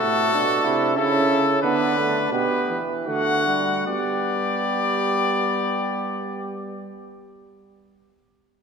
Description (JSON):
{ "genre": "classical, imitative canzona for brass ensemble", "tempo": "72-97 BPM", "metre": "3/4", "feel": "straight", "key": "G major", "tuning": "A4 = 442 Hz", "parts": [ { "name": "bright trumpet", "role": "melody", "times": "0.0-6.9 s", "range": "A4 to F#5", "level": "-24 LUFS", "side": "left 6 dB", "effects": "none" }, { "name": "warm flugelhorn", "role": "second line", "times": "0.0-6.9 s", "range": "D4 to G4", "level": "-26 LUFS", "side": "right 5 dB", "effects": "none" }, { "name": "warm trombone", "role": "accompaniment", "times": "0.0-6.9 s", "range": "G3 to D4", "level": "-27 LUFS", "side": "right 4 dB", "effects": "none" }, { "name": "warm bass trombone", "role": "bass", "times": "0.0-6.9 s", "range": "A2 to G3", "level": "-28 LUFS", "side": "right 2 dB", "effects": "none" } ], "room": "wet church reverb, RT60 2.5 s", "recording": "minimal, uncompressed stereo recording", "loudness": "-20 LUFS", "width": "side -6 dB against mid", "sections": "0.0-3.9 A section; 3.9-8.6 B section", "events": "slowing down 0.0-3.9", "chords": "0.0 Am; 1.0 A/C#; 1.6 G/D; 3.1 D; 3.9 G" }